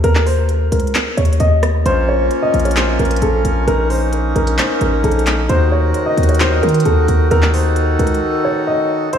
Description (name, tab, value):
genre	hip hop, trap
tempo	132 BPM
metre	4/4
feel	half-time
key	unclear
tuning	A4 = 440 Hz
part	dark baby grand piano	melody	0.0-9.2 s	A4 to Eb5	-18 LUFS	equal	low-pass filter, diffuse ambient delay
part	hard-hitting 808-style bass	bass	0.0-8.2 s	A1 to Eb3	-15 LUFS	equal	none
part	trap drum kit	drums	0.0-9.2 s	handclaps, hi-hat, rim click	-22 LUFS	equal	none
part	accordion	sustained chords	1.9-9.1 s	Eb3 to Bb4	-20 LUFS	right 1 dB	none
room	moderate lush hall reverb, RT60 2.0 s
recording	dreamy mix soaked in reverb, studio ambience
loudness	-13 LUFS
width	side -8 dB against mid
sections	0.0-9.1 A section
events	break 8.2-9.1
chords	0.0 N.C.; 1.9 Bbm; 5.5 Ebm